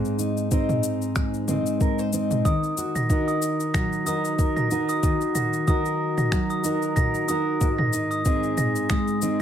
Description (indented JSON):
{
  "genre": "folktronica",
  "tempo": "93 BPM",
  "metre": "4/4",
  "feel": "swing 56% on 16ths",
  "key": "Eb dorian",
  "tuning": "A4 = 440 Hz",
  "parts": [
    { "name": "fingerpicked steel-string acoustic guitar", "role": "arpeggios", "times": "0.0-9.4 s", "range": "Ab2 to C5", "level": "-24 LUFS", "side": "equal", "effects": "vintage 12-bit sampler grit, ping-pong delay" },
    { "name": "organic electronic drum kit", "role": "drums", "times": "0.1-9.4 s", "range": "cabasa, finger snaps, toms", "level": "-29 LUFS", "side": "equal", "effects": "studio reverb" },
    { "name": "electronic kick drum", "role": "drums", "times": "0.5-9.0 s", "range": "none", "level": "-24 LUFS", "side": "equal", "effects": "studio reverb" },
    { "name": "glockenspiel with rubber mallets", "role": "second line", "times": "2.5-9.1 s", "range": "Eb6 to Bb6", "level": "-28 LUFS", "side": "right 2 dB", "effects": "digital delay" }
  ],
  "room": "moderate studio ambience, RT60 0.5 s",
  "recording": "none",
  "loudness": "-21 LUFS",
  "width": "side -9 dB against mid",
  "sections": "0.0-9.4 A section",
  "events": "none",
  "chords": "0.0 Ab; 2.5 Ebm; 7.6 Ab"
}